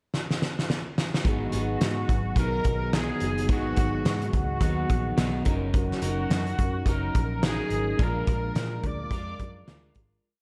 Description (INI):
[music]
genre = indie pop, bedroom pop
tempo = 107 BPM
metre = 4/4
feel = swing 60% on 16ths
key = unclear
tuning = A4 = 440 Hz
[part]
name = loose indie drum kit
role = drums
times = 0.1-10.1 s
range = hi-hat, kick drum, snare drum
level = -29 LUFS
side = equal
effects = none
[part]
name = electric guitar at the edge of break-up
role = accompaniment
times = 1.2-10.4 s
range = Ab2 to Bb4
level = -36 LUFS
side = equal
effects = lush chorus, warbly pitch drift
[part]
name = warbly lo-fi synth keys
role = accompaniment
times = 1.2-10.3 s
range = F3 to Bb4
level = -37 LUFS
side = equal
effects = chorus, cassette tape
[part]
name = vintage muted fingered electric bass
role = bass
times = 1.2-10.2 s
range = Gb1 to Bb2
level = -33 LUFS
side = equal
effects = none
[part]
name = clear trumpet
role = melody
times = 1.3-10.0 s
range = Gb4 to D5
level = -35 LUFS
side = equal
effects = ensemble chorus, analog delay
[sound]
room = light reverb, studio reverb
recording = dark, warm production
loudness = -27 LUFS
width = mono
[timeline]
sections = 0.0-1.3 pickup bar; 1.3-10.2 verse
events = drum fill 0.1-1.3; fade-out 8.0-10.2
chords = 0.0 N.C.; 1.3 Abm7; 5.5 Ebm7/Gb; 8.0 Bb7